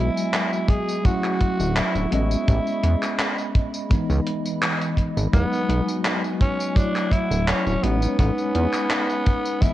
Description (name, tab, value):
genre	vaporwave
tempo	84 BPM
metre	4/4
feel	straight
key	unclear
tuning	A4 = 439 Hz
part	raspy tenor saxophone	melody	0.0-9.7 s	B3 to G#4	-27 LUFS	right 1 dB	vintage 12-bit sampler grit, tape echo
part	bell-like tine electric piano	accompaniment	0.0-9.7 s	E3 to D#5	-26 LUFS	equal	fast stereo tremolo, wide subtle chorus, vintage 12-bit sampler grit, tape echo
part	warbly tape-like pad	sustained chords	0.0-9.7 s	E3 to C#6	-34 LUFS	equal	chorus, built-in reverb
part	chorused synth bass	bass	0.0-8.7 s	D1 to E2	-22 LUFS	equal	none
part	gated 80s digital drum machine	drums	0.2-9.7 s	handclaps, hi-hat, tambourine	-27 LUFS	equal	gated reverb, vintage 12-bit sampler grit
part	kick drum	drums	0.7-9.7 s	none	-19 LUFS	equal	vintage 12-bit sampler grit
room	light reverb, small room ambience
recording	cassette tape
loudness	-20 LUFS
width	side -14 dB against mid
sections	0.0-9.7 A section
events	none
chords	0.0 Emaj9; 1.1 Dmaj9; 2.1 Amaj9#11; 3.9 C#m9 (rootless); 5.3 Emaj9 (rootless); 6.8 Dmaj9; 7.8 Amaj9#11